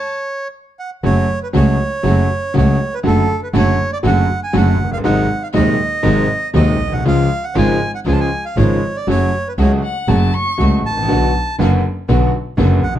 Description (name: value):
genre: tango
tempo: 119 BPM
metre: 4/4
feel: rubato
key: F# harmonic minor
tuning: A4 = 437 Hz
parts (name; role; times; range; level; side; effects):
- bandoneon; melody; 0.0-12.9 s; A4 to A5; -21 LUFS; right 3 dB; plate reverb
- dark violin; second line; 0.0-0.1, 9.8-10.7 s; F#5 to C#6; -22 LUFS; left 1 dB; none
- bright concert grand piano; accompaniment; 1.0-13.0 s; D#1 to F#4; -17 LUFS; left 1 dB; none
- rich chamber string section; stabs; 1.0-12.8 s; G#3 to F#4; -24 LUFS; right 1 dB; none
- rich double bass; bass; 1.0-13.0 s; F#1 to D#2; -17 LUFS; equal; none
room: moderate studio reverb, RT60 0.7 s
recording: dark, warm production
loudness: -13 LUFS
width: side -11 dB against mid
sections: 0.0-1.0 A section; 1.0-13.0 B section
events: stop 0.0-1.0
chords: 0.0 N.C.; 1.0 F#m; 3.0 D/F#; 5.0 G#7; 7.0 C#; 9.1 F#m; 11.1 Bm